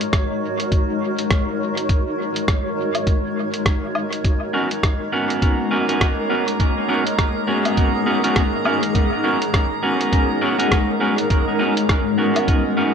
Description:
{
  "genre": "ambient dub",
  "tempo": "102 BPM",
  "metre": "4/4",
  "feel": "swing 59% on 16ths",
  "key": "G# minor",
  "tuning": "A4 = 439 Hz",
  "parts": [
    { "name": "granular cloud pad", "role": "sustained chords", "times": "0.0-12.9 s", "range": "G#3 to C#5", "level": "-22 LUFS", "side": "left 2 dB", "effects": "built-in reverb" },
    { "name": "lo-fi sampler-style drum kit", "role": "drums", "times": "0.0-12.6 s", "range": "hi-hat, rim click, woodblock", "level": "-25 LUFS", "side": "equal", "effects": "dub echo" },
    { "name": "electronic kick drum", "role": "drums", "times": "0.1-12.6 s", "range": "none", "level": "-19 LUFS", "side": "equal", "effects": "none" },
    { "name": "drifting glass-harmonics texture", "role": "texture", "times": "5.0-12.9 s", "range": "A#3 to A#5", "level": "-28 LUFS", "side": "right 2 dB", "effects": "chorus, built-in reverb" },
    { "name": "clean electric guitar", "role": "stabs", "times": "4.5-12.9 s", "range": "B3 to A#4", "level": "-21 LUFS", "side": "right 2 dB", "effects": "spring reverb, dub echo" }
  ],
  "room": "light reverb, digital ambience",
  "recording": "echo-heavy mix",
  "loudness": "-17 LUFS",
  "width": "side -6 dB against mid",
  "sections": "0.0-12.9 A section",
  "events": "none",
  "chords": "0.0 G#m11",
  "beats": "0.13 0.71 1.30 | 1.89 2.48 3.07 3.66 | 4.24 4.83 5.42 6.01 | 6.60 7.19 7.77 8.36 | 8.95 9.54 10.13 10.71 | 11.30 11.89 12.48"
}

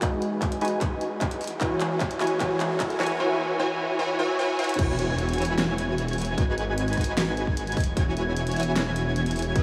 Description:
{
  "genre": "future bass",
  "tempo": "151 BPM",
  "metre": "4/4",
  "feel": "half-time",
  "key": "E major",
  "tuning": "A4 = 440 Hz",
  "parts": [
    { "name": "supersaw stab", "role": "riff", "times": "0.0-9.6 s", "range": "E3 to G#5", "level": "-29 LUFS", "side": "equal", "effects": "sidechain pumping, low-pass filter, tape echo" },
    { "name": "electronic kick drum", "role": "drums", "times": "0.0-9.6 s", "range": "none", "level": "-29 LUFS", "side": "equal", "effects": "none" },
    { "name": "pop drum kit", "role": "drums", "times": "0.0-9.6 s", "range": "crash cymbal, handclaps, hi-hat, snare drum", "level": "-34 LUFS", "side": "equal", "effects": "none" },
    { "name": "riser, swell and impact", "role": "sound effects", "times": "1.2-6.4 s", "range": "none", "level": "-41 LUFS", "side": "equal", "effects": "none" },
    { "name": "airy dreamy lead", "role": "arpeggios", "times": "4.8-9.6 s", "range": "E6 to G#6", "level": "-36 LUFS", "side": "equal", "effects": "chorus, sidechain pumping, tape echo" },
    { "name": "detuned saw bass", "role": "bass", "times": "4.8-9.6 s", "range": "E1 to C#2", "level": "-31 LUFS", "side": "equal", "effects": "chorus, sidechain pumping" }
  ],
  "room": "wet huge ambient reverb, RT60 7.7 s",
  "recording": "dreamy mix soaked in reverb, high-pass filter",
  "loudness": "-26 LUFS",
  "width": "mono",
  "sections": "0.0-4.8 A section; 4.8-9.6 B section",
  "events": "build-up 0.0-4.8; drum fill 0.0-3.2, 4.6; filter sweep on supersaw synth 0.0-4.8; filter sweep 0.0-4.8; drop 4.8-9.6; impact 4.8-6.4",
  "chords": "0.0 G#m7; 1.4 E69; 6.4 G#m7; 7.8 E69",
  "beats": "| 0.02 0.42 0.81 1.21 | 1.61 2.01 2.40 2.80 | 3.20 3.60 3.99 4.39 | 4.79 5.19 5.58 5.98 | 6.38 6.78 7.17 7.57 | 7.97 8.37 8.76 9.16 | 9.56"
}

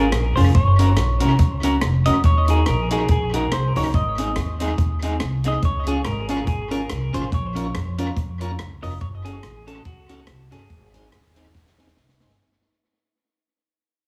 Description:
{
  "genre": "ska",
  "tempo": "142 BPM",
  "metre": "4/4",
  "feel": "swing 56% on 8ths",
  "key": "unclear",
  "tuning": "A4 = 443 Hz",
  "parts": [
    { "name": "semi-hollow electric guitar", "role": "melody", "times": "0.0-11.7 s", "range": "Gb4 to Eb5", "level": "-29 LUFS", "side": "equal", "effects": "tape echo" },
    { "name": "electric guitar at the edge of break-up", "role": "accompaniment", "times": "0.0-12.3 s", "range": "C4 to Bb4", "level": "-27 LUFS", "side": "equal", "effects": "tremolo" },
    { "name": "upright bass", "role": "bass", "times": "0.0-12.4 s", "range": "F1 to F2", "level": "-24 LUFS", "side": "equal", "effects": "none" },
    { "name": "compact cocktail drum kit", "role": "drums", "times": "0.1-12.4 s", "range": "hi-hat, kick drum, rim click, snare drum", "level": "-26 LUFS", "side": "equal", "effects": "tape echo" },
    { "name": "tonewheel organ", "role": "stabs", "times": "5.9-12.3 s", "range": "C4 to Db5", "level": "-36 LUFS", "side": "equal", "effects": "slow rotary speaker" }
  ],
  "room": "light reverb",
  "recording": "heavily compressed radio sound, small room reverb",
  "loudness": "-20 LUFS",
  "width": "mono",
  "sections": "0.0-12.4 A section",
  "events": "fade-out 1.6-12.4; drum fill 11.5-12.4",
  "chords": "0.0 Db; 0.6 Gb; 2.2 Ebm; 3.9 Ab; 5.6 Db; 7.3 Bbm; 9.0 Gbm; 10.7 Ab",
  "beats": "0.13 | 0.55 0.97 1.40 1.82 | 2.24 2.67 3.09 3.51 | 3.94 4.36 4.78 5.20 | 5.63 6.05 6.47 6.90 | 7.32 7.74 8.16 8.59 | 9.01 9.43 9.85 10.28 | 10.70 11.12 11.54 11.97"
}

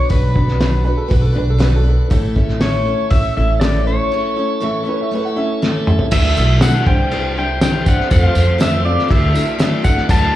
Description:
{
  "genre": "folk rock and heartland rock",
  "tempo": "120 BPM",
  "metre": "4/4",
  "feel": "straight",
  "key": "unclear",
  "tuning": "A4 = 441 Hz",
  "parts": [
    { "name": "pedal steel guitar", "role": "melody", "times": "0.0-10.4 s", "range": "B4 to A5", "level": "-21 LUFS", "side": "left 1 dB", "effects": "slapback echo" },
    { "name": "picked steel-string acoustic guitar", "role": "accompaniment", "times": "0.0-10.3 s", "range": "A2 to C5", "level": "-22 LUFS", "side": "left 2 dB", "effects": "slapback echo" },
    { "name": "tonewheel organ", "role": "sustained chords", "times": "0.0-10.4 s", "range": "C#4 to D5", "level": "-26 LUFS", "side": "right 2 dB", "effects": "slow rotary speaker" },
    { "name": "upright bass", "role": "bass", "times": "0.1-10.3 s", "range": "A1 to F2", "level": "-16 LUFS", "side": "equal", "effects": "none" },
    { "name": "cloth-damped thuddy drum kit", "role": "drums", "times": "0.1-10.2 s", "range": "crash cymbal, hi-hat, kick drum, snare drum, toms", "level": "-17 LUFS", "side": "equal", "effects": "none" },
    { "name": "dark upright piano", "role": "second line", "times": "0.8-5.6 s", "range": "A4 to F#5", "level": "-26 LUFS", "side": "right 4 dB", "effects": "slapback echo" },
    { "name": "tambourine", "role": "percussion", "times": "6.1-10.2 s", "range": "none", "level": "-32 LUFS", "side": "right 4 dB", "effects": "none" }
  ],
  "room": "small room ambience",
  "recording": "live gig heard through the venue's PA, club reverb",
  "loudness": "-13 LUFS",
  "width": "side -14 dB against mid",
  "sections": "0.0-6.1 A section; 6.1-10.4 B section",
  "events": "break 4.1-6.1; drum fill 5.6-6.1",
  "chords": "0.0 Bm; 2.1 A; 6.1 Dadd9; 6.9 Cadd9; 8.1 F; 9.1 Dadd9",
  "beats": "| 0.11 0.61 1.11 1.61 | 2.11 2.61 3.11 3.61 | 4.11 4.61 5.11 5.61 | 6.11 6.61 7.11 7.60 | 8.10 8.60 9.09 9.59 | 10.09"
}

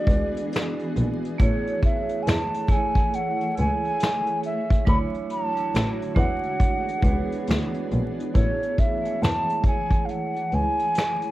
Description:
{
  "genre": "lo-fi hip hop",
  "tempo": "69 BPM",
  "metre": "4/4",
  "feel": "swing 62% on 16ths",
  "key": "A major",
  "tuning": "A4 = 444 Hz",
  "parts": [
    { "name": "mellow hollow jazz flute", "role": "melody", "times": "0.0-11.3 s", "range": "C#5 to B5", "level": "-27 LUFS", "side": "equal", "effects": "low-pass filter, cassette tape, analog delay, plate reverb" },
    { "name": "vibraphone with medium hard mallets", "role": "accompaniment", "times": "0.0-11.3 s", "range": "F#3 to D5", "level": "-31 LUFS", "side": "right 7 dB", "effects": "cassette tape, low-pass filter, plate reverb" },
    { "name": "granular cloud pad", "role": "sustained chords", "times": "0.0-11.3 s", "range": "E3 to G#4", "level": "-32 LUFS", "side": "equal", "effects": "built-in reverb, low-pass filter" },
    { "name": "muted double bass", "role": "bass", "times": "0.1-10.6 s", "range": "A1 to E2", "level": "-25 LUFS", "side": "equal", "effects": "none" },
    { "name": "vintage brush drum kit", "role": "drums", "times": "0.1-11.3 s", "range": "finger snaps, hi-hat, kick drum, snare drum", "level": "-22 LUFS", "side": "equal", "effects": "cassette tape" }
  ],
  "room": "light reverb",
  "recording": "home recording on cassette, vinyl crackle",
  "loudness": "-21 LUFS",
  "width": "side -16 dB against mid",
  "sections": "0.0-11.3 A section",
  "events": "none",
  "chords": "0.0 E9; 1.4 Amaj7; 4.9 Dmaj9; 6.2 E13; 8.3 Amaj7",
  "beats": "0.52 | 1.39 2.26 3.13 4.00 | 4.87 5.74 6.61 7.48 | 8.35 9.22 10.09 10.96"
}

